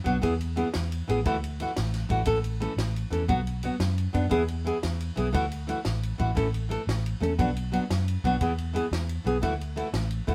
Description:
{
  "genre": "highlife guitar band",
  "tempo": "117 BPM (dotted quarters)",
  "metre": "12/8",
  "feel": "straight",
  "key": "A major",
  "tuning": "A4 = 442 Hz",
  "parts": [
    { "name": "nylon-string guitar", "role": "accompaniment", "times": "0.0-10.3 s", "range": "E3 to A4", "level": "-30 LUFS", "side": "equal", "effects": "none" },
    { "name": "vintage muted fingered electric bass", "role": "bass", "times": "0.1-10.3 s", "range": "A1 to F#2", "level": "-31 LUFS", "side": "equal", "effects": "none" },
    { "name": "compact cocktail drum kit", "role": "drums", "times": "0.1-10.3 s", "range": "kick drum, ride cymbal, snare drum", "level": "-37 LUFS", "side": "equal", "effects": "none" }
  ],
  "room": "moderate studio reverb, RT60 0.8 s",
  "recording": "band playing live in one room",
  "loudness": "-28 LUFS",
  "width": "mono",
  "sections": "0.0-10.3 A section",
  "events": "none",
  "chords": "0.2 E; 1.2 Dadd9; 2.3 A; 3.3 Bm; 4.3 E; 5.3 Dadd9; 6.4 A; 7.4 Bm; 8.4 E; 9.4 Dadd9"
}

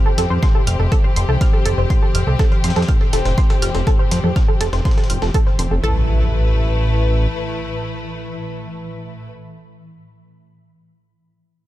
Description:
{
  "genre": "melodic techno",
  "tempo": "122 BPM",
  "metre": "4/4",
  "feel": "straight",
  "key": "A minor",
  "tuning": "A4 = 440 Hz",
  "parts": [
    { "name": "rich studio string section", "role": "sustained chords", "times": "0.0-9.3 s", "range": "A3 to B4", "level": "-26 LUFS", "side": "left 4 dB", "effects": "sidechain pumping" },
    { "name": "swarming drone", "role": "drone", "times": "0.0-9.3 s", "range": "A2 to E3", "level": "-29 LUFS", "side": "right 1 dB", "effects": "built-in reverb, sidechain pumping" },
    { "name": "analog pluck", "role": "arpeggios", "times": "0.1-6.1 s", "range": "A4 to F6", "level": "-25 LUFS", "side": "right 2 dB", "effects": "wide subtle chorus, sidechain pumping, tape echo" },
    { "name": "fat analog bass", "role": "bass", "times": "0.2-7.3 s", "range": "F1 to F2", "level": "-17 LUFS", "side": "equal", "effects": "sidechain pumping" },
    { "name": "dusty soul sampler-style drum kit", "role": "drums", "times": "0.2-5.7 s", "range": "hi-hat, snare drum", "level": "-33 LUFS", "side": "left 1 dB", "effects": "overdrive, sidechain pumping on hats, high-pass filter on hats, high-pass filter on snare, high-pass filter on room" },
    { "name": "electronic hi-hat", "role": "drums", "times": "0.2-5.7 s", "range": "none", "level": "-26 LUFS", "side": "right 2 dB", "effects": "sidechain pumping on hats" },
    { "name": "electronic kick drum", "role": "drums", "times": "0.4-5.4 s", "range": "none", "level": "-16 LUFS", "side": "equal", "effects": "none" },
    { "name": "impact", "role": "sound effects", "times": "5.8-9.3 s", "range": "none", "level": "-27 LUFS", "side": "equal", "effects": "none" }
  ],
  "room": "little or no reverb",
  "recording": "none",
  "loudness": "-15 LUFS",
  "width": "side -15 dB against mid",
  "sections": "0.0-5.8 A section; 5.8-9.8 B section",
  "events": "filter sweep on synth pluck 0.0-5.8",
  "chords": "0.0 F; 5.8 A5"
}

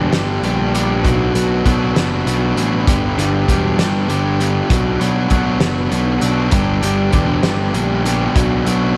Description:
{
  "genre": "indie rock",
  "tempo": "66 BPM (dotted quarters)",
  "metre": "6/8",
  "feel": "straight",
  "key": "G major",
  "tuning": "A4 = 440 Hz",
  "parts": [
    { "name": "overdriven electric guitar", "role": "riff", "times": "0.0-9.0 s", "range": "G2 to G4", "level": "-20 LUFS", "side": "equal", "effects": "none" },
    { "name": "fuzz picked electric bass", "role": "bass", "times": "0.0-8.9 s", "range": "E1 to B1", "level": "-21 LUFS", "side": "equal", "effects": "overdrive" },
    { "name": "loose indie drum kit", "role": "drums", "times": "0.1-8.8 s", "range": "hi-hat, kick drum, snare drum", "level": "-22 LUFS", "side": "equal", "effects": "none" }
  ],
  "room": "light reverb, small room ambience",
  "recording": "none",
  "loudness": "-16 LUFS",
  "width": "mono",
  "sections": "0.0-9.0 A section",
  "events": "none",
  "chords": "0.0 G; 1.0 Bm; 2.9 G; 4.7 Bm; 6.5 G; 8.4 Bm"
}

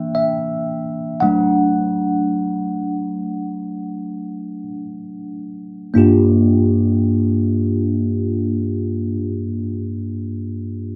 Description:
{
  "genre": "pop",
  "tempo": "free time",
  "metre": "none",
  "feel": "none",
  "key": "G minor",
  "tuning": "A4 = 440 Hz",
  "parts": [
    { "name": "bell-like tine electric piano", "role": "accompaniment", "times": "0.0-11.0 s", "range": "G2 to G5", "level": "-20 LUFS", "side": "equal", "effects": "phaser" }
  ],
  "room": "wet studio reverb, RT60 0.5 s",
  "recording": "band playing live in one room",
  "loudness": "-19 LUFS",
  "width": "mono",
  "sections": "0.0-5.9 A section; 5.9-11.0 B section",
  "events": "slowing down 0.0-5.9; tine electric piano solo 0.0-5.9",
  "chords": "0.0 Em7b5; 1.2 D; 5.9 Gm7"
}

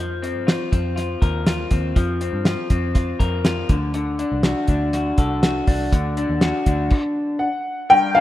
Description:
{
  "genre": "jangly indie pop",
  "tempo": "121 BPM",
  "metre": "4/4",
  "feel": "straight",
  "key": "unclear",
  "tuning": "A4 = 440 Hz",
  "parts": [
    { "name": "electric guitar through a small old amp", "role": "arpeggios", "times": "0.0-8.2 s", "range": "G2 to Bb4", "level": "-23 LUFS", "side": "left 2 dB", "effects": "slapback echo" },
    { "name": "vintage muted picked electric bass", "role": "bass", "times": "0.0-6.9 s", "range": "C2 to G2", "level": "-25 LUFS", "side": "equal", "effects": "none" },
    { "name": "cloth-damped thuddy drum kit", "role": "drums", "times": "0.2-7.0 s", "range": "crash cymbal, hi-hat, kick drum, snare drum", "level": "-20 LUFS", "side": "equal", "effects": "none" },
    { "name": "warm upright piano", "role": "melody", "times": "7.4-8.2 s", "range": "F5 to G5", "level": "-15 LUFS", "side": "left 2 dB", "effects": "none" },
    { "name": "lush unison pad", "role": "sustained chords", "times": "7.9-8.2 s", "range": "D4 to G5", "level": "-26 LUFS", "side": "equal", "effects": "chorus" }
  ],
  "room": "light reverb",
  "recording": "rough home demo mix",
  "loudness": "-18 LUFS",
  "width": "side -14 dB against mid",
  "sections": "0.0-7.9 A section",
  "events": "none",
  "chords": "0.0 Fsus4; 3.7 D"
}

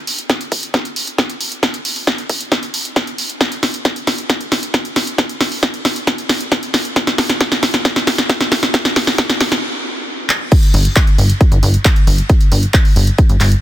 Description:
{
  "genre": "uplifting trance",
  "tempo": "135 BPM",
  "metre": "4/4",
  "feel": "straight",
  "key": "unclear",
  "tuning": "A4 = 440 Hz",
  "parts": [
    { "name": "punchy analog drum machine", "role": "drums", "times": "0.1-13.6 s", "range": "crash cymbal, handclaps, hi-hat, snare drum", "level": "-16 LUFS", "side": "equal", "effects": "sidechain pumping on hats, sidechain pumping on cymbals" },
    { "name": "electronic kick drum", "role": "drums", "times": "0.3-13.3 s", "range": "none", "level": "-12 LUFS", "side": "equal", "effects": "overdrive, high-pass filter on kick" },
    { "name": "plucky analog bass", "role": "bass", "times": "10.7-13.5 s", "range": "G1", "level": "-13 LUFS", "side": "equal", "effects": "sidechain pumping" }
  ],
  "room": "light reverb",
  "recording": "dense, heavily limited modern master",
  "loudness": "-13 LUFS",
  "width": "side -13 dB against mid",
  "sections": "0.0-10.5 A section; 10.5-13.6 B section",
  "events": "build-up 0.0-10.5; drum fill 0.0-9.6, 10.3; stop 9.6-10.5; drop 10.5-13.6",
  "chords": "none"
}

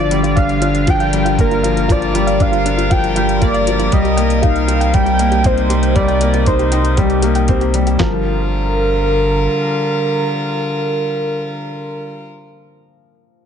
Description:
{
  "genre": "piano and strings electronica",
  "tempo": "118 BPM",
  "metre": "4/4",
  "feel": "straight",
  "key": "G minor",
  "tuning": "A4 = 436 Hz",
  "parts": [
    { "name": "warm velvety synth lead", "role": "melody", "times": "0.0-12.0 s", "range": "G4 to G5", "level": "-19 LUFS", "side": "right 1 dB", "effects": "chorus, ping-pong delay" },
    { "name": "dark string quartet", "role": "sustained chords", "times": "0.0-12.3 s", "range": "C3 to Bb4", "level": "-21 LUFS", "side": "equal", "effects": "sidechain pumping" },
    { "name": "soft round pluck", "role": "arpeggios", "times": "0.0-8.2 s", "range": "F4 to G5", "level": "-27 LUFS", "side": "right 3 dB", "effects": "chorus, sidechain pumping, ping-pong delay" },
    { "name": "felt-muted upright piano", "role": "riff", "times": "0.0-13.5 s", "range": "F3 to Eb4", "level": "-19 LUFS", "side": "left 3 dB", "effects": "none" },
    { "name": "warm sub bass", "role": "bass", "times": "0.0-9.5 s", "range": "G1 to C2", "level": "-19 LUFS", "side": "equal", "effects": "sidechain pumping" },
    { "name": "electronic hi-hat", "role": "drums", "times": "0.1-8.0 s", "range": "none", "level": "-28 LUFS", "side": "left 2 dB", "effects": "overdrive" },
    { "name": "lo-fi sampler-style drum kit", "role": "drums", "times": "0.4-8.1 s", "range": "handclaps, kick drum, snare drum", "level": "-16 LUFS", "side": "equal", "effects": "none" }
  ],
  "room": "light reverb",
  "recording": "nothing above 10.5 kHz",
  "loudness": "-13 LUFS",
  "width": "side -8 dB against mid",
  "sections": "0.0-8.0 A section; 8.0-12.1 B section",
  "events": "drop 0.0-8.0",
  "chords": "0.0 Gm7; 3.9 Cm7; 8.0 Gm7"
}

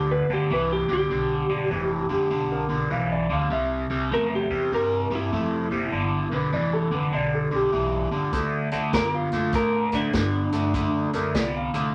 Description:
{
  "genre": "electric blues shuffle",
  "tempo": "100 BPM",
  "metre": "4/4",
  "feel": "swing 64% on 8ths",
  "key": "G mixolydian",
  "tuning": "A4 = 440 Hz",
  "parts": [
    { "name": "electric guitar through a small old amp", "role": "melody", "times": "0.0-11.1 s", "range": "D4 to B4", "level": "-28 LUFS", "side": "equal", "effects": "none" },
    { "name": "overdriven electric guitar", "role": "riff", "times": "0.0-11.9 s", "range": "G2 to B3", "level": "-28 LUFS", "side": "equal", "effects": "phaser" },
    { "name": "upright bass", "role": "bass", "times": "0.0-11.9 s", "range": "F1 to A2", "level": "-33 LUFS", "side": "equal", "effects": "none" },
    { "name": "warm upright piano", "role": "second line", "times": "2.1-11.9 s", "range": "G4 to F5", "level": "-30 LUFS", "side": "equal", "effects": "none" },
    { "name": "swinging big-band drum kit", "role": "drums", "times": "8.3-11.8 s", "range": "hi-hat, kick drum, snare drum", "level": "-31 LUFS", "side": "equal", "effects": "none" }
  ],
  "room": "wet club reverb, RT60 0.5 s",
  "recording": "none",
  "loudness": "-25 LUFS",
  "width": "mono",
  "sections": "0.0-11.9 A section",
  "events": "none",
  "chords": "0.0 G7; 3.5 C; 5.9 G7; 8.3 D7"
}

